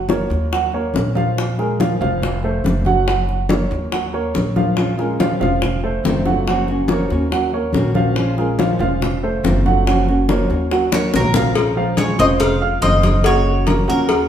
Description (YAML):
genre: latin, Cuban son and guajira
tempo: 141 BPM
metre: 4/4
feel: straight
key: Bb minor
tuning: A4 = 440 Hz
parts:
  - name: warm baby grand piano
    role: arpeggios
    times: 0.0-14.2 s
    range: F3 to F6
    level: -21 LUFS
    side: right 3 dB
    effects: none
  - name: upright bass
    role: bass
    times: 0.0-14.3 s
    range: F1 to Eb2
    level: -21 LUFS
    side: equal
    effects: none
  - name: bongos and cowbell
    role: percussion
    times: 0.1-14.3 s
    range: none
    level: -23 LUFS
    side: left 5 dB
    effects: none
  - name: congas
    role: percussion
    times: 0.1-14.3 s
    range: none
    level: -22 LUFS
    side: left 2 dB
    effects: none
  - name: nylon-string guitar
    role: accompaniment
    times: 4.8-14.1 s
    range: C3 to Gb4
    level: -22 LUFS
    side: left 1 dB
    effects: none
  - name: Cuban tres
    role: melody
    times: 10.9-14.3 s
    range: Bb4 to F5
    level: -21 LUFS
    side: left 2 dB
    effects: none
room: wet large studio reverb, RT60 1.3 s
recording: band playing live in one room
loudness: -15 LUFS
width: side -9 dB against mid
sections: 0.0-11.6 A section; 11.6-14.3 B section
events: drum fill 10.9-11.6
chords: 0.0 Gb; 0.5 Ebm7; 1.4 Bb5; 2.2 F; 3.1 Gb; 3.9 Ebm7; 4.8 Bbm7; 5.6 F7; 6.5 Gbmaj7; 7.3 Ebm7; 8.2 Bbm7; 9.0 F7; 9.9 Gbmaj7; 10.7 Ebm7; 11.6 Bbm7; 12.4 F7; 13.2 Gbmaj7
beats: 0.10 0.52 0.95 | 1.37 1.80 2.22 2.65 | 3.07 3.50 3.92 4.35 | 4.77 5.20 5.62 6.05 | 6.47 6.90 7.32 7.75 | 8.17 8.59 9.02 9.44 | 9.87 10.29 10.71 11.14 | 11.56 11.98 12.40 12.83 | 13.25 13.67 14.10